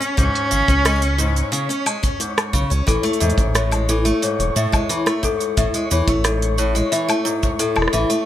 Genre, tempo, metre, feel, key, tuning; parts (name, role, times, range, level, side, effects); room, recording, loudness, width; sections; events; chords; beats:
folktronica; 89 BPM; 4/4; straight; A major; A4 = 441 Hz
rich cello; melody; 0.0-1.5 s; C#4; -21 LUFS; equal; ping-pong delay
picked steel-string acoustic guitar; arpeggios; 0.0-8.3 s; G#2 to C#4; -22 LUFS; equal; ping-pong delay
organic electronic drum kit; drums; 0.0-8.2 s; hi-hat, rim click, shaker, woodblock; -23 LUFS; right 1 dB
flickering grainy texture; texture; 0.0-8.3 s; C#5 to C#6; -30 LUFS; left 2 dB; built-in reverb
round analog bass; bass; 0.2-8.0 s; E1 to A2; -20 LUFS; equal
kick drum; drums; 0.2-8.1 s; -21 LUFS; equal
worn celesta; second line; 2.9-8.3 s; E4 to E5; -23 LUFS; left 4 dB; ping-pong delay
light reverb, small room ambience; -16 LUFS; side -12 dB against mid
0.0-8.3 A section
0.0 C#5; 2.9 Amaj7
| 0.18 0.86 1.53 2.21 | 2.88 3.55 4.23 4.90 | 5.58 6.25 6.92 7.60